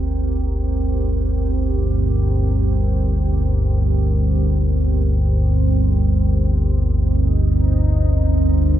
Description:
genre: dark ambient drone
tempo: free time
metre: none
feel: none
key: G minor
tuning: A4 = 440 Hz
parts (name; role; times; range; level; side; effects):
- deep dark ambient pad; sustained chords; 0.0-8.8 s; C4 to Bb4; -25 LUFS; right 4 dB; chorus, built-in reverb
- deep rumbling drone; drone; 0.0-8.8 s; G1 to D2; -16 LUFS; equal; built-in reverb, lush chorus
room: wet echo chamber reverb, RT60 2.1 s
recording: none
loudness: -16 LUFS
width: side -12 dB against mid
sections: 0.0-8.8 A section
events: none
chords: 0.0 Gm; 6.6 Ebm

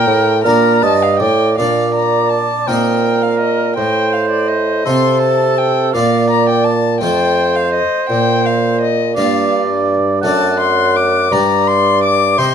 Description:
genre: classical, baroque-style sonata movement with continuo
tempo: 56 BPM (dotted quarters)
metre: 6/8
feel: rubato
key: Bb major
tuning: A4 = 440 Hz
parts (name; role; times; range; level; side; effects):
- warm violin; melody; 0.0-12.5 s; D5 to D6; -18 LUFS; left 8 dB; none
- mellow oboe; second line; 0.0-12.5 s; A4 to F#5; -18 LUFS; right 6 dB; none
- harpsichord; accompaniment; 0.0-12.5 s; F2 to Eb5; -20 LUFS; right 1 dB; none
- mellow bassoon; bass; 0.0-12.5 s; F2 to C3; -16 LUFS; right 1 dB; none
room: light reverb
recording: dark, warm production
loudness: -12 LUFS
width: side -8 dB against mid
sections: 0.0-1.6 A section; 1.6-12.5 A section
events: none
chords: 0.0 Gm; 1.6 Bb; 2.7 Cm7/Bb; 3.8 F/A; 5.9 Bb; 7.0 F; 8.1 Bb; 10.2 D/F#; 11.3 G5

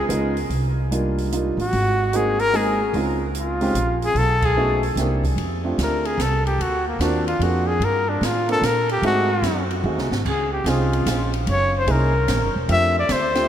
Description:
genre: jazz, small-group swing and bop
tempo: 148 BPM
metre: 3/4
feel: swing 66% on 8ths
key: unclear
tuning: A4 = 440 Hz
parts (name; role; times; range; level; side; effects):
- warm trumpet; melody; 0.0-13.5 s; A#3 to E5; -22 LUFS; left 2 dB; none
- warm grand piano; accompaniment; 0.0-13.5 s; G3 to A4; -25 LUFS; right 2 dB; none
- upright bass; bass; 0.0-13.5 s; Fb1 to Bb2; -23 LUFS; right 1 dB; none
- open jazz drum kit; drums; 0.1-13.4 s; crash cymbal, hi-hat, kick drum, ride cymbal, snare drum; -30 LUFS; right 1 dB; none
room: wet cathedral reverb, RT60 5.2 s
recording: in a vast, echoing space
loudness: -18 LUFS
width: side -10 dB against mid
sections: 0.0-5.4 A section; 5.4-13.5 B section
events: band accent 4.4; trumpet solo 5.4-13.5; drum fill 9.8-10.2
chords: 0.0 Db9; 0.5 Cm11; 1.7 Ab7; 2.9 Dbmaj9; 4.2 B9; 5.0 C7; 5.4 F6; 6.6 D7alt; 7.8 Gm9; 9.0 Ab7b9; 10.2 Dbmaj7; 11.5 Gb13; 12.7 F6

